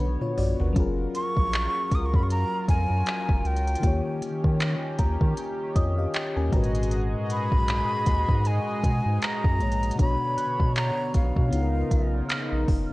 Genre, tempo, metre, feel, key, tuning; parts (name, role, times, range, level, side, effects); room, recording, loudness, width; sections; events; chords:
contemporary R&B; 78 BPM; 4/4; swing 58% on 16ths; F# major; A4 = 440 Hz
FM electric piano with soft pad layer; accompaniment; 0.0-12.9 s; G#2 to A#5; -31 LUFS; left 2 dB; chorus
chorused pulse-width pad; sustained chords; 0.0-12.9 s; C#3 to D#5; -32 LUFS; equal
round analog bass; bass; 0.0-12.9 s; F#1 to D#3; -26 LUFS; equal
worn celesta; texture; 0.0-12.9 s; A#5 to F#6; -40 LUFS; right 1 dB; tape echo
smooth R&B drum kit; drums; 0.2-12.9 s; handclaps, hi-hat, kick drum, toms; -25 LUFS; equal; vintage 12-bit sampler grit
breathy jazz flute; melody; 1.2-12.3 s; E#5 to D#6; -29 LUFS; equal
digital ambience; worn, warbling old tape, cassette tape, warbly pitch drift; -22 LUFS; side -20 dB against mid
0.0-12.9 A section
drum fill 0.0-0.8; FM electric piano fill 5.4-6.9
0.0 Bmadd9; 0.8 F#maj7; 3.8 D#7; 6.5 G#m9; 10.0 Bmadd9; 11.5 C#13